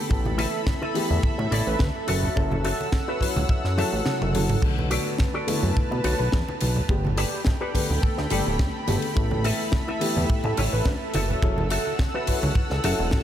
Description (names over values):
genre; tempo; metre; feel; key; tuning
nu-disco, nu disco; 106 BPM; 4/4; swing 54% on 16ths; unclear; A4 = 440 Hz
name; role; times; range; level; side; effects
lush unison pad; sustained chords; 0.0-13.2 s; A4 to E6; -31 LUFS; right 1 dB; chorus, vintage 12-bit sampler grit, sidechain pumping
dark baby grand piano; accompaniment; 0.1-13.2 s; D3 to C#5; -30 LUFS; left 1 dB; sidechain pumping, tape echo
fat analog bass; bass; 0.1-13.2 s; D1 to B2; -26 LUFS; equal; sidechain pumping
kick drum; drums; 0.1-13.2 s; none; -24 LUFS; equal; small room reverb
congas; percussion; 0.3-13.0 s; none; -33 LUFS; right 2 dB; none
electric guitar with an envelope filter; riff; 0.4-13.2 s; E4 to F#5; -32 LUFS; left 2 dB; lush chorus, tape echo
tight funk drum kit; drums; 0.4-13.2 s; crash cymbal, hi-hat, ride cymbal, snare drum, toms; -31 LUFS; left 1 dB; small room reverb
wide unison lead; melody; 1.7-13.2 s; A4 to B4; -35 LUFS; equal; tape echo
room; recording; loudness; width
light reverb; none; -21 LUFS; side -10 dB against mid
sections
0.0-13.2 A section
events
clean electric guitar fill 2.9-4.6; drum fill 3.8-4.6; kick drops out 4.1-4.6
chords
0.1 Asus2; 2.1 F#m7; 4.6 Bm7; 6.9 Gadd9; 9.2 Asus2; 11.1 F#m7